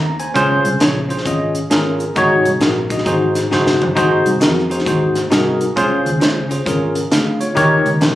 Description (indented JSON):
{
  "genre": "uptempo gospel",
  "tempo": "133 BPM",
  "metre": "4/4",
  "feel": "swing 64% on 8ths",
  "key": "Db major",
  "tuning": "A4 = 440 Hz",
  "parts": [
    { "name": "bell-like tine electric piano", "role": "accompaniment", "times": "0.0-8.2 s", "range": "Ab2 to Bb5", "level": "-15 LUFS", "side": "left 1 dB", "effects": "medium stereo tremolo" },
    { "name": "fingered electric bass", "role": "bass", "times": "0.0-8.2 s", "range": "Gb1 to F2", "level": "-21 LUFS", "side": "equal", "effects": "none" },
    { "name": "crisp fusion drum kit", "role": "drums", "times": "0.2-8.2 s", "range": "hi-hat, kick drum, snare drum, toms", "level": "-20 LUFS", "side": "equal", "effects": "none" }
  ],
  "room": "light reverb",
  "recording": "recorded on a phone in the room, club reverb, compression",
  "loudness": "-13 LUFS",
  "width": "side -14 dB against mid",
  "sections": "0.0-8.2 A section",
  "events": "drum fill 3.5-4.0",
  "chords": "0.4 Dbmaj7; 2.2 Ab7sus4; 3.1 Ab7; 5.8 Dbmaj7; 7.6 Eb7"
}